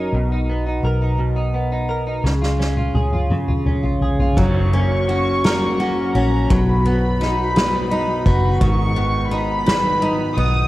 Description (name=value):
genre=six-eight pop ballad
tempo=57 BPM (dotted quarters)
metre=6/8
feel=straight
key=F# major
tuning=A4 = 440 Hz
part: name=direct-recorded clean electric guitar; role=accompaniment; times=0.0-10.7 s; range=G#2 to B4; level=-22 LUFS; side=right 1 dB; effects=double-tracked left and right
part: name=vintage muted fingered electric bass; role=bass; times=0.0-10.7 s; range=F#1 to C#2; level=-21 LUFS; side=equal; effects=none
part: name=soft-mallet drum kit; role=drums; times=2.2-10.5 s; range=crash cymbal, kick drum, ride cymbal, snare drum, toms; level=-22 LUFS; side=equal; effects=none
part: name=dark studio violin section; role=second line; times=4.4-10.7 s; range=A#5 to D#6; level=-23 LUFS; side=equal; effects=none
part: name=picked steel-string acoustic guitar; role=arpeggios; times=4.4-10.7 s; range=D#3 to F#4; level=-24 LUFS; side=left 2 dB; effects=none
room=light reverb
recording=home recording on cassette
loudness=-16 LUFS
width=side -16 dB against mid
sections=0.0-4.4 A section; 4.4-10.7 B section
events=drum fill 2.2-4.4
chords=0.1 Bmaj7; 2.2 C#; 4.4 F#; 6.5 B; 8.6 G#m